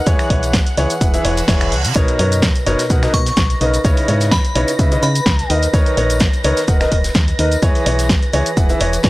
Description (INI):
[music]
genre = piano house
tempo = 127 BPM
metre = 4/4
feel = swing 54% on 16ths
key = B major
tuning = A4 = 440 Hz
[part]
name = dark studio violin section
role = sustained chords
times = 0.0-9.1 s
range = B4 to A#6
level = -26 LUFS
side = right 1 dB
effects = sidechain pumping
[part]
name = bright grand piano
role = riff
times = 0.1-9.1 s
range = B2 to F#5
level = -19 LUFS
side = equal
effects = sidechain pumping, analog delay
[part]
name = solid FM bass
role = bass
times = 0.1-9.1 s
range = D#1 to C#3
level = -19 LUFS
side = equal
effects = sidechain pumping
[part]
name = electronic kick drum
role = drums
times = 0.1-9.1 s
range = none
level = -16 LUFS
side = equal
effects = overdrive
[part]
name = modern studio drum kit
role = drums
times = 0.1-9.1 s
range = hi-hat, shaker, snare drum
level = -32 LUFS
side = left 1 dB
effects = none
[part]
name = punchy analog drum machine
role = drums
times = 0.1-9.1 s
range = finger snaps, hi-hat, shaker, snare drum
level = -21 LUFS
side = equal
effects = none
[part]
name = tambourine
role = percussion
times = 0.1-9.1 s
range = none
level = -35 LUFS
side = left 3 dB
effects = none
[part]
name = reverse cymbal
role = sound effects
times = 1.2-2.0 s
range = none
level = -25 LUFS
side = right 5 dB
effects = none
[part]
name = glassy synth bell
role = melody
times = 3.1-5.5 s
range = B5 to C#6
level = -24 LUFS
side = left 1 dB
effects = chorus, analog delay
[sound]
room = small room ambience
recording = dry, gritty hardware recording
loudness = -13 LUFS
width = side -19 dB against mid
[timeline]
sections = 0.0-9.1 A section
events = reverse cymbal 1.2-2.0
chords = 0.1 E6; 2.0 Bmaj9; 3.8 C#m9; 5.5 Bmaj9; 7.6 E6